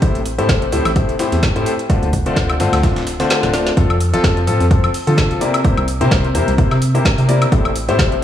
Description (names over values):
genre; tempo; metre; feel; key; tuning
piano house; 128 BPM; 4/4; swing 56% on 16ths; F major; A4 = 440 Hz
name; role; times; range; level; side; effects
clear concert grand piano; riff; 0.0-8.1 s; A2 to D5; -18 LUFS; left 2 dB; sidechain pumping, low-pass filter, tape echo
organ-like FM bass; bass; 0.0-8.2 s; D1 to D3; -18 LUFS; equal; sidechain pumping
breakbeat sampler-style drum kit; drums; 0.0-8.1 s; hi-hat, snare drum; -34 LUFS; right 1 dB; none
electronic kick drum; drums; 0.0-8.1 s; none; -16 LUFS; equal; none
garage drum kit; drums; 0.0-8.2 s; hi-hat, snare drum, woodblock; -22 LUFS; equal; overdrive
room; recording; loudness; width
light reverb, digital ambience; echo-heavy mix, studio reverb; -13 LUFS; side -11 dB against mid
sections
0.0-3.8 A section; 3.8-8.2 B section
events
kick drops out 3.3-3.8; drum fill 3.4-3.8; drop 3.8-8.2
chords
0.0 Am7; 1.9 Dm7; 3.8 F; 5.4 C7; 7.5 Am7